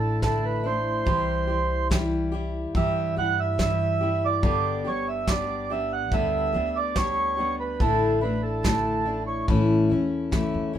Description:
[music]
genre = acoustic folk duo or small band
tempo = 71 BPM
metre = 4/4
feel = straight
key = unclear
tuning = A4 = 440 Hz
[part]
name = mellow accordion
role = second line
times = 0.0-9.5 s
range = A4 to F#5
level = -26 LUFS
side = right 4 dB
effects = none
[part]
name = picked steel-string acoustic guitar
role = accompaniment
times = 0.0-10.8 s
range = G2 to G4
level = -27 LUFS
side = left 3 dB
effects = none
[part]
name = upright bass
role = bass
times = 0.0-10.8 s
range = G1 to G2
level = -30 LUFS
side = equal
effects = none
[part]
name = soft brush drum kit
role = drums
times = 0.2-10.5 s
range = kick drum, snare drum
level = -26 LUFS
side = equal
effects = none
[sound]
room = moderate small room reverb, RT60 0.5 s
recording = minimal, uncompressed stereo recording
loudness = -22 LUFS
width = side -10 dB against mid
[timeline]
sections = 0.0-10.8 A section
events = accordion solo 0.0-10.8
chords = 0.0 Dsus2; 1.1 C; 4.4 G; 7.8 Asus4; 9.5 A

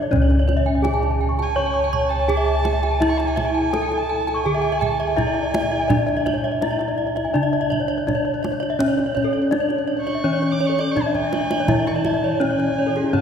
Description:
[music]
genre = Balinese gamelan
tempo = 83 BPM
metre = 4/4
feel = straight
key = C# pelog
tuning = A4 = 440 Hz
[part]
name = gamelan-type bronze metallophone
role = melody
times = 0.0-13.2 s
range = C#4 to C#5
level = -23 LUFS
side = equal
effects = none
[part]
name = gamelan-type bronze metallophone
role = accompaniment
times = 0.0-0.1, 11.7-13.2 s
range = C#3 to E3-30c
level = -33 LUFS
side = equal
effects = none
[part]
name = gamelan-type bronze metallophone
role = arpeggios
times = 0.0-13.2 s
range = E4-30c to C#6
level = -26 LUFS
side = left 5 dB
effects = none
[part]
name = gamelan-type bossed gongs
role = bass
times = 0.0-13.2 s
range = C#2 to E4-30c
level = -24 LUFS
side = equal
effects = none
[part]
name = kendang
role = percussion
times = 0.1-13.2 s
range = none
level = -29 LUFS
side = right 2 dB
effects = none
[part]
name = gamelan-type bronze metallophone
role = arpeggios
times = 0.2-13.0 s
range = G#4-30c to C#6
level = -26 LUFS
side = right 4 dB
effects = none
[part]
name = warm erhu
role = second line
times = 1.4-13.2 s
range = G#5-35c to D6+22c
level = -30 LUFS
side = right 2 dB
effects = none
[sound]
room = wet cathedral reverb, RT60 5.0 s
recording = recorded in a church or concert hall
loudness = -18 LUFS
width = side -7 dB against mid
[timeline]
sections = 0.1-13.2 A section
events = drum fill 11.1-11.7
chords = none

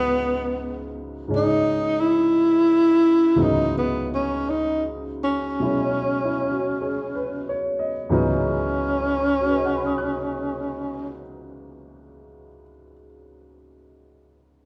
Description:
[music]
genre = jazz ballad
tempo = 46-60 BPM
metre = 4/4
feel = swing 66% on 8ths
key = C# minor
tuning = A4 = 444 Hz
[part]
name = breathy tenor saxophone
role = melody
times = 0.0-11.2 s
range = B3 to E4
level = -23 LUFS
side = equal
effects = none
[part]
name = warm baby grand piano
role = accompaniment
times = 0.0-14.7 s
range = C#2 to F#6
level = -29 LUFS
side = equal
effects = none
[sound]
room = wet recital hall reverb, RT60 1.4 s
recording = recorded in a church or concert hall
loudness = -22 LUFS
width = mono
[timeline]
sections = 0.0-8.1 A section; 8.1-13.3 B section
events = slowing down 0.0-8.1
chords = 0.0 C#m11

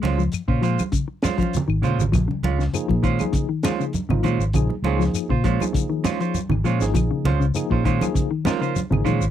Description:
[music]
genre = afrobeat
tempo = 100 BPM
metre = 4/4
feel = straight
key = Bb minor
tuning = A4 = 441 Hz
[part]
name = mellow electric guitar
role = arpeggios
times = 0.0-9.3 s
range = C3 to Ab3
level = -25 LUFS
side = left 6 dB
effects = none
[part]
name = clean electric guitar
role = stabs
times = 0.0-9.2 s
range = Ab3 to C5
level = -26 LUFS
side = right 11 dB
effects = none
[part]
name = fingered electric bass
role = bass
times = 0.0-9.3 s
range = Ab1 to Bb2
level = -22 LUFS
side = equal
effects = none
[part]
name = crunchy breakbeat drum kit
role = drums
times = 0.0-9.2 s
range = hi-hat, kick drum, snare drum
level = -26 LUFS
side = equal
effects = none
[part]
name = congas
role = percussion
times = 0.1-9.2 s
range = none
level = -27 LUFS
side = right 3 dB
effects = none
[part]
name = shekere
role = percussion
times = 0.2-9.3 s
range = none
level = -32 LUFS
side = left 5 dB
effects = none
[part]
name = claves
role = percussion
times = 0.3-9.1 s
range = none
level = -37 LUFS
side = left 25 dB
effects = none
[part]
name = tine electric piano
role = accompaniment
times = 2.7-9.2 s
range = F3 to Bb4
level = -28 LUFS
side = left 1 dB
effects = overdrive, fast stereo tremolo
[sound]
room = little or no reverb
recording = dry, close 1970s-style studio recording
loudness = -19 LUFS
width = side -10 dB against mid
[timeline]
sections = 0.0-9.3 A section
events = drum fill 1.2-2.1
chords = 0.0 Bbm9

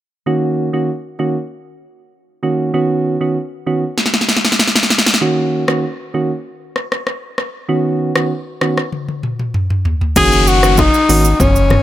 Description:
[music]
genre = afrobeats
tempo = 97 BPM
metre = 4/4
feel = straight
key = F# major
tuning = A4 = 439 Hz
[part]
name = soft electric-piano-like synth keys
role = accompaniment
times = 0.3-11.3 s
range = D#3 to F#4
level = -17 LUFS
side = right 2 dB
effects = chorus
[part]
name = deep house drum kit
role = drums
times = 4.0-11.8 s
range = crash cymbal, hi-hat, kick drum, rim click, shaker, snare drum, toms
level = -15 LUFS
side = equal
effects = none
[part]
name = breathy tenor saxophone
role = melody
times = 10.2-11.8 s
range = C#4 to G#4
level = -13 LUFS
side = left 3 dB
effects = none
[part]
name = warm sub bass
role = bass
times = 10.2-11.8 s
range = F#1 to G#1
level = -15 LUFS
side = equal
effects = none
[part]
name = congas and bongos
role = percussion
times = 10.2-11.8 s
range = none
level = -21 LUFS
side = left 3 dB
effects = none
[part]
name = downlifter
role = sound effects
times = 10.2-11.8 s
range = none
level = -21 LUFS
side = left 1 dB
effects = none
[sound]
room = light reverb, digital ambience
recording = none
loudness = -13 LUFS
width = side -13 dB against mid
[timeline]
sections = 0.3-10.2 A section; 10.2-11.8 B section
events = drum fill 4.0-5.2, 8.9-10.2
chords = 0.3 F#6; 2.7 Badd9; 5.2 F#6; 7.7 Badd9; 10.2 F#6

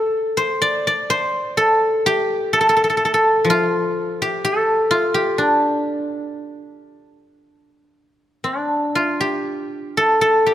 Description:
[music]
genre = chinese traditional, Chinese solo plucked strings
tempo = 56-64 BPM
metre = 2/4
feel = rubato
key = D yu mode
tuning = A4 = 440 Hz
[part]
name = guzheng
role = solo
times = 0.0-10.5 s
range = F3 to D5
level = -16 LUFS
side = equal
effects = none
[sound]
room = light reverb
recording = close, detailed microphones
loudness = -16 LUFS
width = side -12 dB against mid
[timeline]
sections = 0.0-7.4 A section; 7.4-10.5 B section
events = none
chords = none

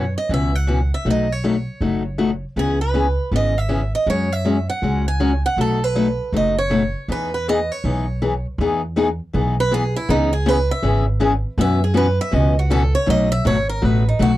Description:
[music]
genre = acoustic string swing (jazz manouche)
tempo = 160 BPM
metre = 4/4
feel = swing 61% on 8ths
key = E major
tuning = A4 = 440 Hz
[part]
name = picked swing-style acoustic guitar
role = melody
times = 0.0-14.4 s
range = D#4 to G#5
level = -22 LUFS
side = right 3 dB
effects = none
[part]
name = picked steel-string acoustic guitar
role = accompaniment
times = 0.0-14.3 s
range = B2 to C#5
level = -20 LUFS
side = left 3 dB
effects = none
[part]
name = upright bass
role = bass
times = 0.0-14.4 s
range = F#1 to F#2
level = -20 LUFS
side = right 1 dB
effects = none
[sound]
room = light reverb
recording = dry, close 1970s-style studio recording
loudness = -17 LUFS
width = side -15 dB against mid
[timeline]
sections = 0.0-8.6 A section; 8.6-14.4 B section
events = steel-string acoustic guitar solo 8.6-14.4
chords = 0.0 F#7sus4; 1.1 B7; 2.6 C#m7; 4.1 F#sus2; 5.6 B7; 7.1 Emaj7; 10.1 C#m7; 11.6 F#7sus4; 13.1 B7

